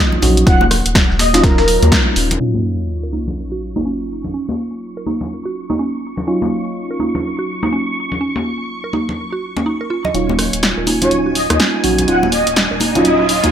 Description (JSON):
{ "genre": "deep house", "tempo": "124 BPM", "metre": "4/4", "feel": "swing 61% on 16ths", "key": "Eb minor", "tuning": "A4 = 440 Hz", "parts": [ { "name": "mellow FM electric piano", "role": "stabs", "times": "0.0-13.5 s", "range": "Gb3 to Gb4", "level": "-20 LUFS", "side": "right 1 dB", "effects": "chorus, phaser, sidechain pumping, low-pass filter" }, { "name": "congas", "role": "percussion", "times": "0.1-13.5 s", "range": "none", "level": "-23 LUFS", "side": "left 2 dB", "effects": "none" }, { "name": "round analog bass", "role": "bass", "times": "0.2-2.4, 10.1-13.5 s", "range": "Eb1 to Eb2", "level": "-20 LUFS", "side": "equal", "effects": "sidechain pumping" }, { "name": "dusty soul sampler-style drum kit", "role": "drums", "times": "0.2-2.3 s", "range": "hi-hat, snare drum", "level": "-24 LUFS", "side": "right 1 dB", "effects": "none" }, { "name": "punchy analog drum machine", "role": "drums", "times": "0.2-2.5, 10.1-13.5 s", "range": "crash cymbal, hi-hat, rim click, snare drum", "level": "-17 LUFS", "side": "equal", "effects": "overdrive, low-pass filter on snare, low-pass filter on hats, low-pass filter on cymbals, low-pass filter on room" }, { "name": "breathy flute-like synth lead", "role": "melody", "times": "0.5-1.9, 11.0-13.4 s", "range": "Bb4 to Gb5", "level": "-18 LUFS", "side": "equal", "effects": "ensemble chorus, dub echo" }, { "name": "electronic kick drum", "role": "drums", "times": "0.5-2.0 s", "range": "none", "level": "-14 LUFS", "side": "equal", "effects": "overdrive" }, { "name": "mallet-like synth pluck", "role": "arpeggios", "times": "2.4-13.5 s", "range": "Db4 to Eb5", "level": "-24 LUFS", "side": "right 4 dB", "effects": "chorus, sidechain pumping, ping-pong delay" }, { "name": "sub drop and riser", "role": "sound effects", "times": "2.4-4.3, 11.8-13.5 s", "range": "none", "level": "-23 LUFS", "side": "right 1 dB", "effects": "none" }, { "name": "soft string machine", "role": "texture", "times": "5.4-13.5 s", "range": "Ab5 to Db6", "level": "-27 LUFS", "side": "equal", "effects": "ensemble chorus, sidechain pumping" } ], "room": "light reverb", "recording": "low-pass filter, faint mains hum", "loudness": "-14 LUFS", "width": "side -9 dB against mid", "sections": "0.0-2.4 A section; 2.4-10.1 B section; 10.1-13.5 C section", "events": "band accent 1.9; impact 2.4-4.3; filter sweep on synth arpeggio sound 2.4-10.1; filter sweep 2.4-10.1; build-up 10.1-13.5; filter sweep on FM electric piano 10.1-13.5; riser 11.8-13.5", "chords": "0.0 Ebm9", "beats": "| 0.47 0.95 1.44 1.92 | 2.40 2.89 3.37 3.85 | 4.34 4.82 5.31 5.79 | 6.28 6.76 7.24 7.73 | 8.21 8.69 9.18 9.66 | 10.15 10.63 11.11 11.60 | 12.08 12.56 13.05" }